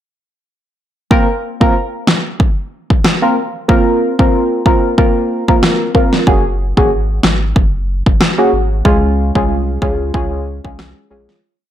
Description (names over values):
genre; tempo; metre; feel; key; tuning
dancehall; 93 BPM; 4/4; swing 56% on 16ths; Bb minor; A4 = 439 Hz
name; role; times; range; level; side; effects
deep mellow chord stab; accompaniment; 1.1-11.4 s; Ab3 to Bb4; -14 LUFS; equal; chorus
pop drum kit; drums; 1.1-11.4 s; kick drum, rim click, snare drum; -13 LUFS; equal; overdrive
warm sub bass; bass; 6.3-11.3 s; Gb1 to Db2; -18 LUFS; equal; none
room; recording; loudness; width
light reverb, digital ambience; blown-out, overdriven recording, overdrive; -11 LUFS; side -11 dB against mid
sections
1.1-11.4 verse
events
fade-out 8.9-11.4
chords
1.1 Bbsus2; 6.3 Gbadd9; 8.9 Db